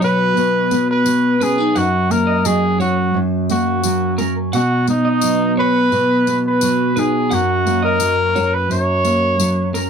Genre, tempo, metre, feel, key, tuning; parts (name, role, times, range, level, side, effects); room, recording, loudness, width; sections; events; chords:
acoustic pop; 86 BPM; 4/4; straight; B major; A4 = 438 Hz
warm trumpet; melody; 0.0-9.7 s; D#4 to C#5; -18 LUFS; equal
nylon-string guitar; accompaniment; 0.0-9.9 s; F#2 to F#4; -17 LUFS; equal; double-tracked left and right
electric guitar through a small old amp; arpeggios; 0.0-9.9 s; A#4 to F#5; -24 LUFS; right 4 dB; lush chorus
tambourine; percussion; 0.0-9.9 s; -28 LUFS; left 24 dB
light reverb; dry, close 1970s-style studio recording; -14 LUFS; side -7 dB against mid
0.0-9.9 A section
0.0 B5; 1.8 F#; 4.5 B; 7.3 F#